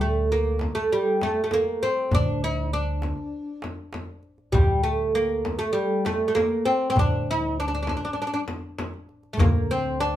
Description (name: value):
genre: Arabic maqam ensemble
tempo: 99 BPM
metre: 4/4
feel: straight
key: D maqam bayati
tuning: A4 = 440 Hz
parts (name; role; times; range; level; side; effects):
- oud; melody; 0.0-10.2 s; G3 to E4-50c; -24 LUFS; equal; none
- upright bass; bass; 0.0-10.2 s; D2; -27 LUFS; right 1 dB; none
- darbuka; percussion; 0.5-9.5 s; none; -32 LUFS; right 2 dB; none
- frame drum; percussion; 0.6-9.5 s; none; -27 LUFS; left 1 dB; none
room: wet studio reverb, RT60 0.6 s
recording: band playing live in one room, faint mains hum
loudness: -22 LUFS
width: side -12 dB against mid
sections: 0.0-10.2 A section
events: none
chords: none